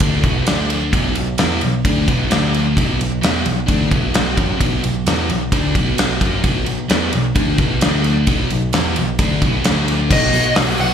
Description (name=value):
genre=hard rock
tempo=131 BPM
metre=4/4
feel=straight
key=unclear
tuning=A4 = 440 Hz
part: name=sludgy distorted guitar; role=riff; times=0.0-10.9 s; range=B2 to F#4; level=-20 LUFS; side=equal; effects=overdrive, slapback echo
part: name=picked electric bass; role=bass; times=0.0-10.9 s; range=B1 to F#2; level=-20 LUFS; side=equal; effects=none
part: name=gated 80s drum kit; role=drums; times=0.0-10.9 s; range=crash cymbal, hi-hat, kick drum, ride cymbal, snare drum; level=-18 LUFS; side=equal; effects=none
part: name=high-gain lead guitar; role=melody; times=10.1-10.9 s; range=D#5 to F#5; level=-18 LUFS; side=left 1 dB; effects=distortion, plate reverb
part: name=bright tonewheel organ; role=sustained chords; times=10.1-10.9 s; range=B3 to C#5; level=-27 LUFS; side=equal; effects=slow rotary speaker, chorus vibrato, plate reverb
room=light reverb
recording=live gig heard through the venue's PA, club reverb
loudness=-14 LUFS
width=side -8 dB against mid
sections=0.0-10.1 A section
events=none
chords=0.5 D5; 0.9 B5; 2.3 D5; 2.8 B5; 7.8 D5; 8.3 B5; 9.6 D5; 10.1 B